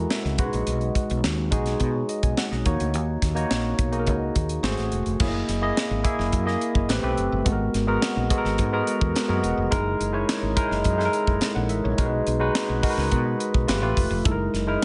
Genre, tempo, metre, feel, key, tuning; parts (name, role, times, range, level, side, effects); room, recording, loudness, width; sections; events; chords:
polished 1980s jazz-funk pop; 106 BPM; 4/4; straight; A4 = 440 Hz
barky tine electric piano; accompaniment; 0.0-14.8 s; G#3 to A#5; -27 LUFS; equal; overdrive, subtle chorus
woody fretless electric bass; bass; 0.0-14.8 s; E1 to B2; -29 LUFS; equal
crisp fusion drum kit; drums; 0.1-14.8 s; crash cymbal, hi-hat, kick drum, snare drum; -28 LUFS; equal; gated reverb
light reverb, small room ambience; nothing above 10.4 kHz; -24 LUFS; mono
0.0-5.2 A section; 5.2-14.8 B section
tine electric piano fill 0.0-0.7
0.4 B6; 2.7 D#m7; 4.6 G#7b9; 5.2 F#13; 6.9 Am9; 7.5 G#m9; 9.7 F#13; 12.0 B6; 13.7 G9; 14.3 F#13